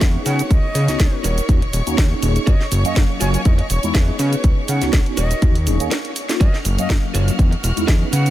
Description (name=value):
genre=filtered disco house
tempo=122 BPM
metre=4/4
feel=swing 54% on 16ths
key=F# major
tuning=A4 = 444 Hz
part: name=clear studio violin section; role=sustained chords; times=0.0-8.3 s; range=F#4 to E#6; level=-29 LUFS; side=left 1 dB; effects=sidechain pumping
part: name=direct-recorded clean electric guitar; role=riff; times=0.0-8.3 s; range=D#4 to F#5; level=-31 LUFS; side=right 3 dB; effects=lush chorus, sidechain pumping
part: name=fat analog bass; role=bass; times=0.0-8.3 s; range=D#1 to C#3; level=-19 LUFS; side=equal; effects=sidechain pumping
part: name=electronic kick drum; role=drums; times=0.0-8.0 s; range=none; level=-16 LUFS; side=equal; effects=none
part: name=house drum kit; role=drums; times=0.0-8.3 s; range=hi-hat, shaker, snare drum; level=-26 LUFS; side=right 1 dB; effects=sidechain pumping on hats, sidechain pumping on perc
part: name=mellow tine electric piano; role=accompaniment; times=0.1-8.3 s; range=F#3 to E#5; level=-25 LUFS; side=equal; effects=medium stereo tremolo, phaser, sidechain pumping
part: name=breathy concert flute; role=melody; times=0.3-8.3 s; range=D#5 to G#5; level=-30 LUFS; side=right 1 dB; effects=sidechain pumping, diffuse ambient delay
room=little or no reverb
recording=none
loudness=-15 LUFS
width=side -14 dB against mid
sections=0.0-8.3 A section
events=break 5.9-6.4; drum fill 5.9-6.4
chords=0.3 C#9sus4; 1.2 D#m7; 2.5 F#maj7; 3.5 Emaj7; 4.2 C#9sus4; 5.2 D#m7; 6.4 F#maj7; 7.4 Emaj7